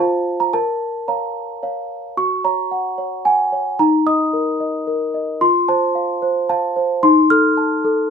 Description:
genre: classical, lullaby for celesta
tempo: 111 BPM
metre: 3/4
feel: straight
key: unclear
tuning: A4 = 441 Hz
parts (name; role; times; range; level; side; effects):
- celesta; solo; 0.0-8.1 s; Eb4 to F6; -16 LUFS; equal; none
room: moderate small room reverb, RT60 0.5 s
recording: minimal, uncompressed stereo recording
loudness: -16 LUFS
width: side -6 dB against mid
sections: 0.0-2.2 A section; 2.2-8.1 B section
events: none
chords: 0.0 F; 0.5 Bbm; 2.2 Gb; 3.8 Eb5; 5.4 F; 7.0 F7/Eb

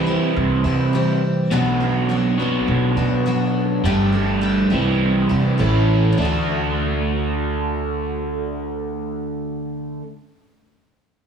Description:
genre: rock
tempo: 103 BPM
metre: 4/4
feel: straight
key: D mixolydian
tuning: A4 = 440 Hz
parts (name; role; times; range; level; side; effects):
- picked twelve-string acoustic guitar; accompaniment; 0.0-10.1 s; B2 to A4; -24 LUFS; left 3 dB; slapback echo
- crunchy overdriven guitar; riff; 0.0-10.0 s; A2 to G4; -21 LUFS; right 2 dB; phaser, slapback echo
- upright bass; bass; 0.4-10.0 s; G1 to C3; -23 LUFS; right 1 dB; none
room: light reverb, studio ambience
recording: live gig heard through the venue's PA, club reverb, small room ambience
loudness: -17 LUFS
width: side -7 dB against mid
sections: 0.0-6.2 A section; 6.2-8.5 B section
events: none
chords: 0.0 C; 1.5 Bm; 3.8 Gsus2; 4.7 C; 5.6 A; 6.2 D

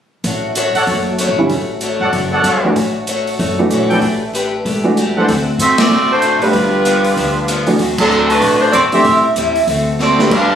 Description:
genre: jazz, big band swing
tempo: 191 BPM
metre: 4/4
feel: swing 62% on 8ths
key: D major, D mixolydian from 5.3 s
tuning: A4 = 440 Hz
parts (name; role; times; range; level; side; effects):
- picked acoustic archtop guitar; accompaniment; 0.2-10.5 s; G2 to C#5; -19 LUFS; left 2 dB; none
- upright bass; bass; 0.2-10.6 s; E1 to A2; -22 LUFS; left 1 dB; none
- open jazz drum kit; drums; 0.2-10.4 s; crash cymbal, hi-hat, kick drum, ride cymbal, snare drum; -21 LUFS; right 1 dB; none
- clear trumpet section; stabs; 0.8-5.2 s; A4 to G5; -18 LUFS; right 1 dB; none
- warm upright piano; accompaniment; 1.4-10.3 s; D3 to B4; -15 LUFS; right 1 dB; none
- warm saxophone section; melody; 5.6-10.6 s; F#3 to F5; -12 LUFS; right 1 dB; none
room: moderate large studio reverb, RT60 1.2 s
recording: recorded on a phone in the room, studio reverb, compression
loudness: -12 LUFS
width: side -8 dB against mid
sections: 0.2-5.3 A section; 5.3-10.6 B section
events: band accent 5.7, 7.9; drum fill 10.0-10.3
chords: 0.2 Dmaj7; 4.0 A9sus4; 5.3 D7; 6.5 G7; 7.8 D7; 9.0 Am7; 9.7 D7

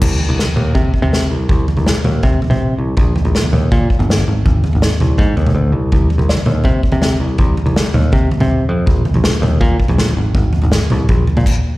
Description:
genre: indie rock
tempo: 163 BPM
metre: 4/4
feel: straight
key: unclear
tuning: A4 = 440 Hz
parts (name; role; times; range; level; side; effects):
- picked electric bass; bass; 0.0-11.4 s; G1 to C3; -16 LUFS; equal; none
- unplugged drum kit; drums; 0.0-11.5 s; crash cymbal, kick drum, snare drum, toms; -14 LUFS; equal; none
room: little or no reverb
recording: live gig heard through the venue's PA, recital hall reverb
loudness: -12 LUFS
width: side -18 dB against mid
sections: 0.0-11.8 A section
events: stop 11.5-11.8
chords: none

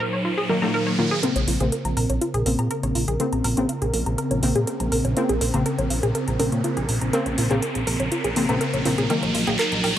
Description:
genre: melodic techno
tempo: 122 BPM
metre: 4/4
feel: straight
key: Bb minor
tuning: A4 = 435 Hz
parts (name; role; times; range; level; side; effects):
- warm analog pad; sustained chords; 0.0-10.0 s; Bb2 to C5; -28 LUFS; equal; chorus
- analog pluck; arpeggios; 0.0-10.0 s; F4 to Bb5; -27 LUFS; equal; chorus, tape echo
- riser; sound effects; 0.0-10.0 s; none; -30 LUFS; right 1 dB; none
- synth brass stab; stabs; 0.5-9.6 s; Bb2 to C4; -26 LUFS; left 1 dB; chorus, tape echo
- house drum kit; drums; 1.2-10.0 s; handclaps, hi-hat, woodblock; -29 LUFS; equal; overdrive
- fat analog bass; bass; 1.4-10.0 s; Bb1 to Bb2; -25 LUFS; equal; transformer saturation
room: light reverb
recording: dry, gritty hardware recording, high-pass filter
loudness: -20 LUFS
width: side -11 dB against mid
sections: 0.0-1.2 A section; 1.2-10.0 B section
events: riser 0.0-1.2, 1.2-10.0; filter sweep on synth stab 0.0-1.2, 1.2-10.0; build-up 1.2-10.0; filter sweep 1.2-10.0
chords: 0.0 Ebm/Bb; 1.2 Bbmadd9; 9.1 Ebm/Bb

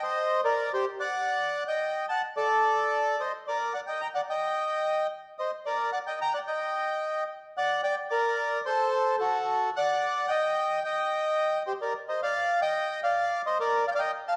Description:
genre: tango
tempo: 110 BPM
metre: 4/4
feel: rubato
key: G harmonic minor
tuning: A4 = 438 Hz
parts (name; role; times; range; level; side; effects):
- bandoneon; solo; 0.0-14.3 s; F#4 to Bb5; -28 LUFS; equal; none
room: wet large studio reverb, RT60 1.3 s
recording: heard from further back in the room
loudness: -28 LUFS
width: mono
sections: 0.0-12.2 A section; 12.2-14.4 B section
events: none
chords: 0.0 Cmadd9; 1.3 D; 3.5 Gm; 5.6 Eb; 7.8 D5; 8.9 D; 10.0 G5; 12.2 Bb

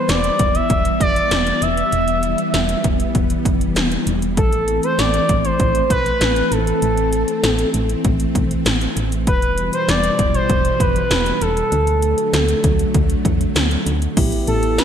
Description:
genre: synth-pop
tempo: 98 BPM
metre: 4/4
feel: straight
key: unclear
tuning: A4 = 440 Hz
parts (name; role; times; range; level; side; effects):
- expressive portamento lead; melody; 0.0-14.8 s; A4 to E5; -19 LUFS; equal; chorus, digital delay
- string machine, violas; sustained chords; 0.0-14.8 s; B2 to C4; -22 LUFS; left 1 dB; ensemble chorus
- solid FM bass; bass; 0.1-14.8 s; E1 to E2; -22 LUFS; equal; none
- 80s electronic pad drums; drums; 0.1-14.8 s; crash cymbal, hi-hat, kick drum, snare drum; -20 LUFS; equal; gated reverb
- soft electric-piano-like synth keys; accompaniment; 14.2-14.8 s; B3 to G4; -22 LUFS; equal; chorus
room: moderate lush hall reverb, RT60 2.4 s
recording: bright 1980s-style digital production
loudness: -15 LUFS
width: side -8 dB against mid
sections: 0.0-14.2 A section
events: none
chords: 0.0 Em; 4.4 Am; 9.3 Em; 11.7 D; 14.2 Em/A

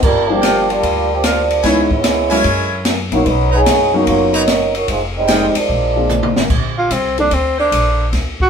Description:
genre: jazz, big band swing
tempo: 148 BPM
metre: 4/4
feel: swing 67% on 8ths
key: unclear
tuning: A4 = 442 Hz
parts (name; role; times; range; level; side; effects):
- muted trombone section; second line; 0.0-6.4 s; D#3 to Db5; -15 LUFS; right 2 dB; none
- upright bass; bass; 0.0-8.5 s; F1 to Gb2; -21 LUFS; equal; none
- open jazz drum kit; drums; 0.0-8.5 s; crash cymbal, hi-hat, kick drum, ride cymbal, snare drum, toms; -19 LUFS; left 1 dB; none
- dark grand piano; accompaniment; 0.3-7.3 s; Fb3 to A4; -19 LUFS; left 3 dB; none
- bright trumpet section; stabs; 0.4-5.5 s; D#4 to A#5; -20 LUFS; equal; none
- breathy tenor saxophone; melody; 6.8-8.5 s; C4 to F#4; -15 LUFS; right 1 dB; none
- clear saxophone section; sustained chords; 7.6-8.1 s; Bb3 to C5; -24 LUFS; left 1 dB; none
room: wet small room reverb, RT60 0.5 s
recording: band playing live in one room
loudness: -12 LUFS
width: side -7 dB against mid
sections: 0.0-6.5 A section; 6.5-8.5 B section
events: trombone section solo 0.0-6.5; drum fill 6.1-6.5; tenor saxophone solo 6.5-8.5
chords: 0.0 Gm7; 1.6 Dbm7; 2.4 Gb7; 3.3 Bmaj9; 4.9 Fm9; 5.7 Bb7; 6.5 Bbmaj9

